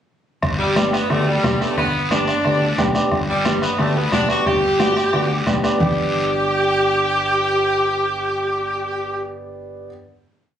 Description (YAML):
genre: latin, cumbia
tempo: 178 BPM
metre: 4/4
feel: straight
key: G major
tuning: A4 = 440 Hz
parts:
  - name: fingered electric bass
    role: bass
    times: 0.4-9.9 s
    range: G1 to D2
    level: -26 LUFS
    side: left 1 dB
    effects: none
  - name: bombo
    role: percussion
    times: 0.4-5.9 s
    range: none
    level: -26 LUFS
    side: equal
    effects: none
  - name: congas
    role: percussion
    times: 0.4-5.9 s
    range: none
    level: -24 LUFS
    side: left 2 dB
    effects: none
  - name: guiro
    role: percussion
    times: 0.4-5.9 s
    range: none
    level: -28 LUFS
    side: right 1 dB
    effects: none
  - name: bright saxophone section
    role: melody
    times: 0.6-9.3 s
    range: G3 to G4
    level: -19 LUFS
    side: equal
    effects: none
  - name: warm upright piano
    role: accompaniment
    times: 0.8-9.9 s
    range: B3 to G5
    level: -24 LUFS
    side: right 2 dB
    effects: none
room: moderate studio reverb, RT60 0.5 s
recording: recorded on a phone in the room, club reverb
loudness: -16 LUFS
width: side -9 dB against mid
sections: 0.4-5.8 A section; 5.8-8.5 final chord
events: upright piano fill 2.6-3.1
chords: 0.4 G